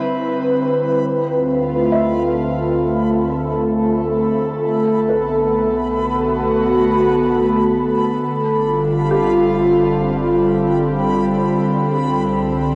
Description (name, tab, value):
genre	ambient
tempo	67 BPM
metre	4/4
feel	straight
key	D dorian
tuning	A4 = 440 Hz
part	airy breathy pad	sustained chords	0.0-12.8 s	D3 to B4	-18 LUFS	equal	chorus, cassette tape
part	backwards swelling texture	texture	0.2-12.8 s	B5	-29 LUFS	equal	built-in reverb, cassette tape, shimmer reverb
part	warm sub bass	bass	1.0-12.8 s	G1 to D2	-37 LUFS	equal	tube saturation
part	felt-muted upright piano	arpeggios	1.9-11.8 s	G4 to E5	-29 LUFS	equal	none
room	wet studio reverb, RT60 0.6 s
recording	home recording on cassette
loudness	-17 LUFS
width	mono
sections	0.0-1.0 A section; 1.0-12.8 B section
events	filter sweep on analog synth pad 0.0-1.0; fade-in on sub bass 1.0-12.8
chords	0.0 Cmaj9; 1.0 Dm7; 4.6 Bm7; 8.2 G9sus4; 11.8 Cmaj7sus2